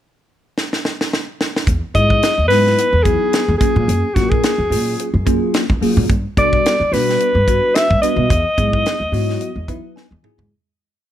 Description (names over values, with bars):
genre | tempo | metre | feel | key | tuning
electric jazz fusion | 108 BPM | 4/4 | swing 56% on 16ths | E major | A4 = 440 Hz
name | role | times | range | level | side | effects
tight funk drum kit | drums | 0.6-10.5 s | hi-hat, kick drum, snare drum, toms | -19 LUFS | equal | none
upright bass | bass | 1.7-10.5 s | D#2 to B2 | -18 LUFS | equal | none
warm alto saxophone | melody | 1.9-9.9 s | F#4 to E5 | -16 LUFS | left 1 dB | tape echo
bell-like tine electric piano | accompaniment | 1.9-10.5 s | F#3 to G#5 | -21 LUFS | equal | phaser
room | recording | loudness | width
light reverb | none | -14 LUFS | side -11 dB against mid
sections
0.0-1.7 pickup bar; 1.7-10.5 A section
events
drum fill 0.6-1.7, 10.0-10.5; fade-out 8.3-10.5; tine electric piano fill 8.9-10.5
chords
0.0 N.C.; 1.7 Emaj9; 3.6 F#maj9; 6.1 Gmaj9; 8.3 Emaj9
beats
0.01 0.56 1.11 | 1.67 2.22 2.78 3.33 | 3.88 4.44 4.99 5.54 | 6.09 6.65 7.20 7.75 | 8.30 8.86 9.41 9.96